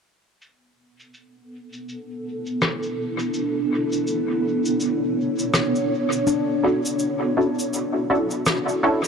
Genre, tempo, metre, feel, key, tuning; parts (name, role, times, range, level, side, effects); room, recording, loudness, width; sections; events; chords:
ambient dub; 82 BPM; 4/4; swing 59% on 16ths; B dorian; A4 = 440 Hz
granular cloud pad; sustained chords; 1.8-9.1 s; B3 to D5; -23 LUFS; right 1 dB; built-in reverb
cabasa and rim click; drums; 0.4-9.1 s; -25 LUFS; equal; low-pass filter on snare, low-pass filter on perc, low-pass filter on room, dub echo
handpan; arpeggios; 6.3-8.9 s; D4; -26 LUFS; left 8 dB; tape echo
filtered dub chord stab; stabs; 6.6-9.0 s; C#4 to A4; -22 LUFS; right 1 dB; ensemble chorus, dub echo
light reverb, studio reverb; dark, warm production; -20 LUFS; side -6 dB against mid
0.4-9.1 A section
filter sweep on drum 0.4-9.1; filter sweep on ambient pad 0.4-9.1
0.4 Bm11